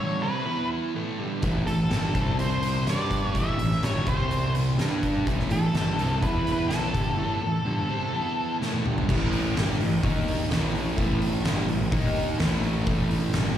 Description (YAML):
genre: blues rock power trio and southern rock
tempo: 126 BPM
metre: 4/4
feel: straight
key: unclear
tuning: A4 = 440 Hz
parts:
  - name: octave-fuzz lead guitar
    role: melody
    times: 0.0-8.6 s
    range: A4 to E5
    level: -30 LUFS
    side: equal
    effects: distortion, slapback echo
  - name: overdriven electric guitar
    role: riff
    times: 0.0-13.6 s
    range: G2 to G4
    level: -28 LUFS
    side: equal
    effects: slapback echo
  - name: fuzz picked electric bass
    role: bass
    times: 1.4-13.6 s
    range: G1 to G2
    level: -27 LUFS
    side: equal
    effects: overdrive
  - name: oversized low-tuned drum kit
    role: drums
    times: 1.4-13.4 s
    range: crash cymbal, hi-hat, kick drum, snare drum, toms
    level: -28 LUFS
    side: equal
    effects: none
room: light reverb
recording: live gig heard through the venue's PA, recital hall reverb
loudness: -23 LUFS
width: side -10 dB against mid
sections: 0.0-9.1 A section; 9.1-13.6 B section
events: break 7.2-9.1; drum fill 8.6-9.1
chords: 0.5 E5; 0.9 A5; 2.1 C5; 2.9 G5; 3.3 A5; 4.1 C5; 4.8 G5; 5.3 A5; 6.2 E5; 6.7 A5; 8.1 E5; 8.6 A5; 10.0 D#5; 10.5 A5; 11.9 D#5; 12.4 A5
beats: 0.47 0.95 | 1.43 1.91 2.39 2.87 | 3.35 3.83 4.31 4.79 | 5.26 5.74 6.22 6.70 | 7.18 7.65 8.13 8.61 | 9.08 9.56 10.03 10.51 | 10.98 11.45 11.92 12.39 | 12.87 13.34